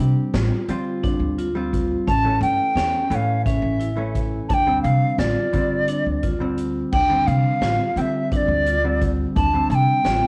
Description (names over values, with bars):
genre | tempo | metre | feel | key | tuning
progressive instrumental, band music in an uneven meter | 173 BPM (eighths) | 7/8 | straight | D minor | A4 = 440 Hz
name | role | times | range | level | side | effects
hollow-body jazz guitar | accompaniment | 0.0-10.3 s | D3 to G4 | -29 LUFS | equal | cassette tape
vibraphone with hard mallets | arpeggios | 0.0-10.3 s | C#4 to F4 | -30 LUFS | equal | cassette tape, tape echo
upright bass | bass | 0.0-10.2 s | A1 to D3 | -26 LUFS | equal | none
street-band drum kit | drums | 0.0-10.2 s | crash cymbal, hi-hat, kick drum, snare drum | -29 LUFS | equal | none
bright wooden flute | melody | 2.1-10.3 s | D5 to A5 | -24 LUFS | equal | cassette tape
room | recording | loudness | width
moderate studio reverb, RT60 0.5 s | home recording on cassette | -21 LUFS | mono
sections
0.0-6.9 A section; 6.9-10.3 A section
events
none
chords
0.0 Dm7; 2.1 A7; 4.5 Dm7